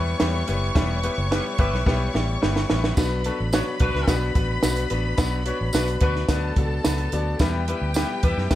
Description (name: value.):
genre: uptempo 1960s-style soul.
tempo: 108 BPM.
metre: 4/4.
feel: straight.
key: B minor.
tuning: A4 = 444 Hz.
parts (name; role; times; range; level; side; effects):
warm symphonic violin section; second line; 0.0-8.6 s; G4 to C#6; -31 LUFS; equal; none.
bright upright piano; accompaniment; 0.0-8.6 s; F#3 to D5; -27 LUFS; left 4 dB; none.
vintage muted fingered electric bass; bass; 0.0-8.6 s; E1 to F#2; -25 LUFS; equal; none.
compact cocktail drum kit; drums; 0.2-8.6 s; hi-hat, kick drum, snare drum, splash cymbal; -24 LUFS; right 1 dB; none.
clear saxophone section; second line; 1.0-8.6 s; D4 to B4; -31 LUFS; equal; none.
tambourine; percussion; 3.0-8.6 s; none; -35 LUFS; right 3 dB; none.
room: small room ambience.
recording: dark, warm production.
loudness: -20 LUFS.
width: side -14 dB against mid.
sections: 0.0-8.6 A section.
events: drum fill 1.9-3.0.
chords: 0.0 Em; 3.0 Bm; 7.4 Em.